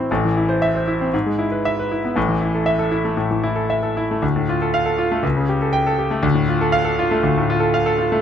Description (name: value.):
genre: classical, virtuoso piano study.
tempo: 117 BPM.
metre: 4/4.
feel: rubato.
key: unclear.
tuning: A4 = 439 Hz.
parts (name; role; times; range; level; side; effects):
clear concert grand piano; solo; 0.0-8.2 s; A1 to G5; -17 LUFS; equal; none.
room: little or no reverb.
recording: close, detailed microphones.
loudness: -17 LUFS.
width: side -8 dB against mid.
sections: 0.1-8.2 A section.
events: none.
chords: 0.1 Am; 1.1 E/G#; 2.2 A5; 4.2 Dm; 5.2 A7/C#; 6.2 Dm.